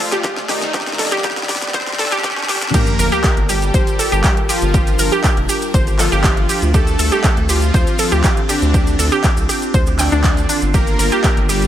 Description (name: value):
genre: progressive house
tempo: 120 BPM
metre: 4/4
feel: straight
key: G minor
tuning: A4 = 438 Hz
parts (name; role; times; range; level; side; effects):
- soft supersaw; melody; 0.0-11.7 s; D3 to Bb4; -23 LUFS; left 1 dB; dub echo
- evolving wavetable pad; sustained chords; 0.0-11.7 s; F2 to A5; -25 LUFS; equal; phaser, built-in reverb, sidechain pumping
- glassy wavetable pluck; arpeggios; 0.0-11.5 s; D4 to G5; -21 LUFS; right 2 dB; chorus, sidechain pumping, dub echo
- riser and sub drop; sound effects; 0.0-4.7 s; none; -27 LUFS; equal; none
- deep house drum kit; drums; 0.1-11.7 s; crash cymbal, handclaps, hi-hat, snare drum; -22 LUFS; left 1 dB; overdrive
- electronic kick drum; drums; 0.2-11.3 s; none; -16 LUFS; equal; overdrive
- cabasa; percussion; 2.7-11.7 s; none; -27 LUFS; right 3 dB; none
- round analog bass; bass; 3.0-11.7 s; F1 to D2; -18 LUFS; equal; sidechain pumping
room: little or no reverb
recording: high-pass filter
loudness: -13 LUFS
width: side -11 dB against mid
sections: 0.0-2.7 A section; 2.7-11.7 B section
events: build-up 0.0-2.7; drum fill 0.0-2.7; riser 0.0-2.7; filter sweep on synth arpeggio sound 0.0-2.7; filter sweep on ambient pad 0.0-2.7; drop 2.7-11.7; impact 2.7-4.7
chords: 0.0 F13; 2.7 Gm7; 6.7 Dm7; 10.7 Gm7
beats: 0.24 | 0.74 1.24 1.74 2.24 | 2.74 3.24 3.74 4.24 | 4.74 5.24 5.74 6.24 | 6.74 7.24 7.74 8.24 | 8.74 9.24 9.74 10.24 | 10.74 11.24